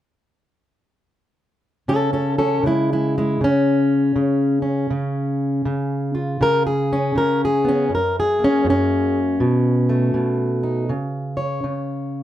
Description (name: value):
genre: acoustic country blues, solo or duo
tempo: 80 BPM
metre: 4/4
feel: swing 63% on 8ths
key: unclear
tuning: A4 = 440 Hz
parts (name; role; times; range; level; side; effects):
- fingerpicked plugged-in steel-string acoustic guitar; solo; 1.9-12.2 s; F#2 to C#5; -17 LUFS; equal; none
room: moderate studio reverb, RT60 0.5 s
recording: none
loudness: -17 LUFS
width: side -12 dB against mid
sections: 1.9-12.2 A section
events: none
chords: 1.9 C#; 7.9 F#; 9.4 B7; 10.9 N.C.